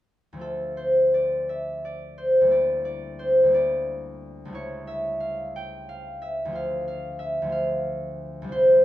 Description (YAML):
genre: classical, solo harp piece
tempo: 60 BPM (dotted quarters)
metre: 6/8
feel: rubato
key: D minor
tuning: A4 = 437 Hz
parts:
  - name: concert harp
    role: solo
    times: 0.3-8.8 s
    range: C2 to G5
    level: -22 LUFS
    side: equal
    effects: none
room: moderate stone room reverb, RT60 1.2 s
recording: dark, warm production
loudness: -22 LUFS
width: side -14 dB against mid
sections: 0.4-8.8 A section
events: none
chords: 0.4 Dm; 2.5 Em7b5/D; 4.5 A7/C#; 6.5 Dm